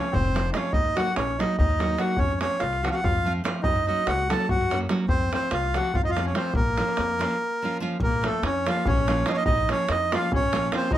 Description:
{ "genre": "balkan folk, Balkan wedding band", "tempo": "288 BPM (eighths)", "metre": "7/8", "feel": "straight", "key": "Bb harmonic minor", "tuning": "A4 = 440 Hz", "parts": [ { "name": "accordion", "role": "melody", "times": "0.0-11.0 s", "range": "A4 to A5", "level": "-26 LUFS", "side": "right 2 dB", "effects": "none" }, { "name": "mellow clarinet", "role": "second line", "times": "0.0-11.0 s", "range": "A3 to A4", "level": "-31 LUFS", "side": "left 6 dB", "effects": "none" }, { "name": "nylon-string guitar", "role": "accompaniment", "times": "0.0-10.9 s", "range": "F3 to Gb4", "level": "-29 LUFS", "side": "right 2 dB", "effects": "none" }, { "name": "davul", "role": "percussion", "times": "0.0-11.0 s", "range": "none", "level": "-28 LUFS", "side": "right 1 dB", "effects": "none" }, { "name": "upright bass", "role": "bass", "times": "0.1-11.0 s", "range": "F1 to Gb2", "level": "-28 LUFS", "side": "left 1 dB", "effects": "none" } ], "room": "moderate small room reverb, RT60 0.5 s", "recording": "none", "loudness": "-22 LUFS", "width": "side -12 dB against mid", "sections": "0.0-8.0 A section; 8.0-11.0 B section", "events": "break 7.4-8.0", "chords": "0.0 F; 0.7 Ebm; 2.2 F; 3.6 Gb; 5.1 F; 6.5 Bbm" }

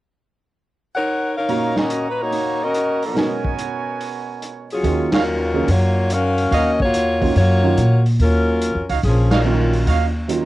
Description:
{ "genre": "jazz, big band swing", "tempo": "143 BPM", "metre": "4/4", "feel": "swing 67% on 8ths", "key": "Eb minor", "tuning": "A4 = 440 Hz", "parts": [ { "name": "warm saxophone section", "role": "melody", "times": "0.9-9.9 s", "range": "F3 to Gb5", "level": "-20 LUFS", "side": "left 2 dB", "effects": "cassette tape" }, { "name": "warm baby grand piano", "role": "accompaniment", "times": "1.5-10.5 s", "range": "Bb2 to F5", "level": "-24 LUFS", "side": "right 5 dB", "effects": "cassette tape" }, { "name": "clear trumpet section", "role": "stabs", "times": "1.5-10.1 s", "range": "Bb3 to Bb5", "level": "-25 LUFS", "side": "right 6 dB", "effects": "cassette tape" }, { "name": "vintage drum kit", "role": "drums", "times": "1.5-10.4 s", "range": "hi-hat, kick drum, ride cymbal, snare drum", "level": "-25 LUFS", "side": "equal", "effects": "none" }, { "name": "upright bass", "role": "bass", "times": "4.8-10.5 s", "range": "Bb1 to Bb2", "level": "-18 LUFS", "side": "equal", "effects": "transformer saturation" } ], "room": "light reverb", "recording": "home recording on cassette", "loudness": "-16 LUFS", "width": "side -16 dB against mid", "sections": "0.0-1.5 A section; 1.5-4.8 B section; 4.8-10.5 C section", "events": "band accent 5.1, 9.2", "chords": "0.0 Ebm7; 1.5 Ebm7/Bb; 3.2 Abm11; 4.8 Ebm9" }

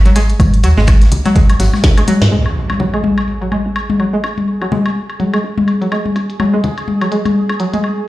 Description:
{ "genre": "minimal techno", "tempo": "125 BPM", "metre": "4/4", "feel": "swing 58% on 16ths", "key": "unclear", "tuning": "A4 = 444 Hz", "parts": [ { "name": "woody FM bass", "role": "bass", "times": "0.0-8.0 s", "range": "F#1 to G#2", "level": "-13 LUFS", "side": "equal", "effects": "sidechain pumping, high-pass filter" }, { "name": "string-like resonator pluck", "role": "riff", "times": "0.1-7.8 s", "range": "F#3 to G#3", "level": "-19 LUFS", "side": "right 1 dB", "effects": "chorus, sidechain pumping, dub echo" }, { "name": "minimal click drum kit", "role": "drums", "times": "0.1-7.8 s", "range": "finger snaps, hi-hat, snare drum", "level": "-22 LUFS", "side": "equal", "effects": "low-pass filter on snare, low-pass filter on hats, low-pass filter on room" }, { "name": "electronic toms, woodblock and congas", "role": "percussion", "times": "0.1-7.9 s", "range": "none", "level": "-16 LUFS", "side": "left 2 dB", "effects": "tape echo" }, { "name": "unplugged drum kit", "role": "drums", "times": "0.2-2.3 s", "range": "hi-hat, snare drum, tambourine", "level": "-30 LUFS", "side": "left 1 dB", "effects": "high-pass filter on hats, high-pass filter on snare, high-pass filter on perc, high-pass filter on room" }, { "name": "electronic kick drum", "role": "drums", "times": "0.4-1.9 s", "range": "none", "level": "-10 LUFS", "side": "equal", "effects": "none" }, { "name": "impact", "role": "sound effects", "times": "2.3-4.2 s", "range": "none", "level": "-21 LUFS", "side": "right 1 dB", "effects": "none" }, { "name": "bubbling stepped-filter texture", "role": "texture", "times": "3.1-8.1 s", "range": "G#4", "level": "-28 LUFS", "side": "right 4 dB", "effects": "chorus, built-in reverb, sidechain pumping" } ], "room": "moderate small room reverb, RT60 0.5 s", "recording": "played on a big sound system in a bare room, stone room reverb", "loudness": "-12 LUFS", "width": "side -16 dB against mid", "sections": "0.0-2.3 A section; 2.3-8.1 B section", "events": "drum fill 1.8-2.3; band accent 2.2; impact 2.3-4.2; filter sweep on drum 2.3-8.1", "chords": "none" }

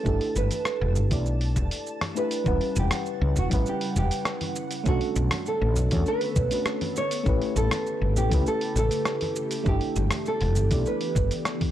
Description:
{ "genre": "sunset chillout", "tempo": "100 BPM", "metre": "4/4", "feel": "straight", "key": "E dorian", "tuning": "A4 = 439 Hz", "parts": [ { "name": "nylon-string guitar", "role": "melody", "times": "0.0-11.7 s", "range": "F#4 to C#5", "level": "-30 LUFS", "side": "right 2 dB", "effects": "tape echo" }, { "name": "mellow FM electric piano", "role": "accompaniment", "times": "0.0-11.7 s", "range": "G3 to F#5", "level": "-31 LUFS", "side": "moving between left 6 dB and right 6 dB", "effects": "chorus, auto-pan, tape echo" }, { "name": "congas", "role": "percussion", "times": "0.0-11.7 s", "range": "none", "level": "-35 LUFS", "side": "right 1 dB", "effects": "none" }, { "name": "twinkling granular texture", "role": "texture", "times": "0.0-2.5 s", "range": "A5", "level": "-46 LUFS", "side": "right 3 dB", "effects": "built-in reverb" }, { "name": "woody fretless electric bass", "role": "bass", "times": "0.1-11.3 s", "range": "E1 to E2", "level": "-24 LUFS", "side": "equal", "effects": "transformer saturation" }, { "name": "dusty soul sampler-style drum kit", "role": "drums", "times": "0.1-11.7 s", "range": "cabasa, hi-hat, rim click", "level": "-32 LUFS", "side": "equal", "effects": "none" }, { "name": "electronic kick drum", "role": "drums", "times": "0.1-11.7 s", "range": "none", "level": "-27 LUFS", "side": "equal", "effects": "none" }, { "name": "ethereal airy pad", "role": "sustained chords", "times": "3.1-11.7 s", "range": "C#3 to F#5", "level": "-36 LUFS", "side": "equal", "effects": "ensemble chorus, built-in reverb" } ], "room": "little or no reverb", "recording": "dry, gritty hardware recording, cassette tape", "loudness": "-23 LUFS", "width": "side -12 dB against mid", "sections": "0.0-2.5 A section; 2.5-11.7 B section", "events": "break 1.9-2.5", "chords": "0.1 G6; 2.5 Em69; 4.9 Bm7; 7.3 A7; 9.7 G6" }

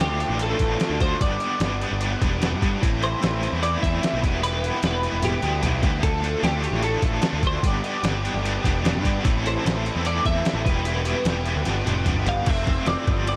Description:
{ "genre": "indie rock", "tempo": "149 BPM", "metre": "4/4", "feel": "straight", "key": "A minor", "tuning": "A4 = 443 Hz", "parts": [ { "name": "twelve-string electric guitar", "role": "melody", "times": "0.0-13.4 s", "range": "G4 to F5", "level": "-30 LUFS", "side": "equal", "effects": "analog chorus" }, { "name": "biting overdriven guitar", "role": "riff", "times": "0.0-13.4 s", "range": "E2 to A4", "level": "-32 LUFS", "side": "equal", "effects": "tremolo" }, { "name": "crunchy overdriven guitar", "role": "riff", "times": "0.0-13.4 s", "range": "E3 to A4", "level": "-32 LUFS", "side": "equal", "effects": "ensemble chorus, tape echo" }, { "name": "fuzz picked electric bass", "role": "bass", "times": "0.0-13.4 s", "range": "E1 to G2", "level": "-28 LUFS", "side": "equal", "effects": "overdrive" }, { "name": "lo-fi sampler-style drum kit", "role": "drums", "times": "0.0-13.4 s", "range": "crash cymbal, hi-hat, kick drum, ride cymbal, snare drum, toms", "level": "-27 LUFS", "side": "equal", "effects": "overdrive" } ], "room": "light reverb", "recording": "none", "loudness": "-23 LUFS", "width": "mono", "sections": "0.0-12.5 A section", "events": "drum fill 5.2-6.0, 11.7-12.5", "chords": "0.0 Dm; 1.2 G; 2.8 Am; 4.2 Em; 6.0 Dm; 7.6 G; 9.2 Am; 10.7 Em; 11.7 G7; 12.5 Fmaj7" }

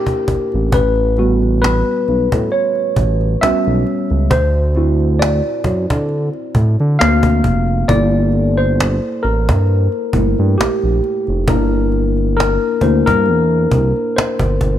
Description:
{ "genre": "R&B, neo-soul", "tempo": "67 BPM", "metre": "4/4", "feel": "swing 54% on 16ths", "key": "G dorian", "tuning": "A4 = 438 Hz", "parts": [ { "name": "tine electric piano", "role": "accompaniment", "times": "0.0-14.8 s", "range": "G3 to E#5", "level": "-16 LUFS", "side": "left 1 dB", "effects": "lush chorus" }, { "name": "cajon", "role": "drums", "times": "0.1-14.8 s", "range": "none", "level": "-19 LUFS", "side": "equal", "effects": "none" }, { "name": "smooth synth bass", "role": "bass", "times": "0.3-14.8 s", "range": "E#1 to D3", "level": "-16 LUFS", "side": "equal", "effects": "none" } ], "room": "studio ambience", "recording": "none", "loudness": "-13 LUFS", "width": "side -11 dB against mid", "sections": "0.0-14.8 A section", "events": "tine electric piano solo 0.0-14.8", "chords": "0.0 C9; 0.7 A13; 4.3 D9; 7.0 D7alt; 7.9 Gm69; 11.5 C9/G" }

